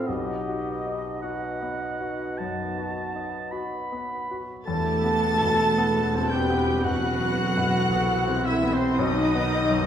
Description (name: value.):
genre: classical.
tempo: 51-56 BPM.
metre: 4/4.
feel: rubato.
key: E minor.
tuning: A4 = 440 Hz.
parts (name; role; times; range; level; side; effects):
clear baby grand piano; melody; 0.0-9.9 s; B1 to D#5; -28 LUFS; left 2 dB; none.
mellow clarinet; second line; 0.0-9.9 s; C4 to A4; -35 LUFS; equal; none.
warm oboe; second line; 0.0-9.9 s; C5 to B5; -32 LUFS; right 1 dB; none.
mellow bassoon; accompaniment; 0.0-4.3 s; B3; -36 LUFS; right 5 dB; none.
warm French horn section; sustained chords; 0.0-9.9 s; B3 to A4; -32 LUFS; left 2 dB; none.
mellow hollow concert flute; second line; 0.1-9.9 s; C5 to A5; -34 LUFS; right 1 dB; none.
clear chamber violin section; melody; 4.7-9.9 s; C6 to A6; -34 LUFS; left 2 dB; none.
rich symphonic violin section; second line; 4.7-9.9 s; C5 to A5; -34 LUFS; left 2 dB; none.
warm symphonic viola section; accompaniment; 4.7-9.9 s; D#4 to B4; -35 LUFS; right 2 dB; none.
warm trumpet section; stabs; 4.7-9.9 s; C4 to A4; -31 LUFS; right 2 dB; none.
rich studio double bass section; bass; 4.7-9.9 s; B1 to E2; -33 LUFS; right 2 dB; none.
warm symphonic cello section; bass; 4.7-9.9 s; C3 to A3; -30 LUFS; right 2 dB; none.
warm tuba; bass; 4.7-9.9 s; E1 to C2; -33 LUFS; right 3 dB; none.
room: wet recital hall reverb, RT60 1.4 s.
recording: recorded in a church or concert hall.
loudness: -23 LUFS.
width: side -9 dB against mid.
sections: 0.0-4.7 A section; 4.7-9.9 B section.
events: none.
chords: 0.1 B; 4.7 Em; 9.0 B.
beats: | 0.07 1.23 2.38 3.52 | 4.67 5.77 6.85 7.93 | 9.01.